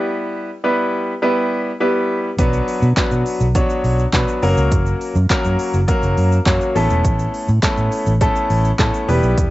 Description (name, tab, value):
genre	dance-pop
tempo	103 BPM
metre	4/4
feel	straight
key	unclear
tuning	A4 = 439 Hz
part	clear baby grand piano	accompaniment	0.0-9.5 s	F#3 to C#5	-18 LUFS	left 1 dB	sidechain pumping, plate reverb
part	vintage muted fingered electric bass	bass	2.4-9.5 s	E1 to B2	-17 LUFS	equal	sidechain pumping
part	deep house drum kit	drums	2.4-9.5 s	handclaps, hi-hat, kick drum, shaker, snare drum	-19 LUFS	equal	cassette tape
part	tube shaker	percussion	2.4-9.5 s	none	-42 LUFS	right 10 dB	none
room	light reverb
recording	home recording on cassette, nothing above 7.9 kHz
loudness	-15 LUFS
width	side -16 dB against mid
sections	0.0-9.5 A section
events	none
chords	0.0 Em; 2.4 Bm; 4.4 F#; 6.8 Aadd9